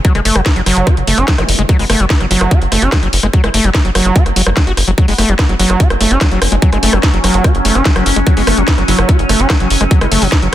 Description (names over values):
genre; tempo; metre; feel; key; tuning
psychedelic trance; 146 BPM; 4/4; straight; F# minor; A4 = 440 Hz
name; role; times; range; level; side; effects
overdriven acid bass; riff; 0.0-10.5 s; F#3 to F#4; -16 LUFS; moving between left 3 dB and right 3 dB; distortion, auto-pan, sidechain pumping, digital delay
drum and bass drum kit; drums; 0.0-10.5 s; hi-hat, rim click, snare drum; -16 LUFS; equal; none
electronic kick drum; drums; 0.0-10.4 s; none; -11 LUFS; equal; none
resonant blip pluck; second line; 0.1-10.3 s; A3 to F#4; -28 LUFS; right 2 dB; none
tight sequencer bass; bass; 0.1-10.5 s; F#1; -15 LUFS; equal; none
zap; sound effects; 1.4-1.5 s; none; -24 LUFS; equal; none
overtone-sweeping drone; sustained chords; 5.8-10.5 s; F#3 to C#4; -18 LUFS; equal; chorus, built-in reverb, sidechain pumping
room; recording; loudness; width
little or no reverb; dense, heavily limited modern master; -9 LUFS; side -12 dB against mid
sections
0.0-10.5 A section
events
none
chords
0.0 F#5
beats
| 0.05 0.46 0.87 1.28 | 1.69 2.10 2.51 2.92 | 3.33 3.75 4.16 4.57 | 4.98 5.39 5.80 6.21 | 6.62 7.03 7.44 7.86 | 8.27 8.68 9.09 9.50 | 9.91 10.32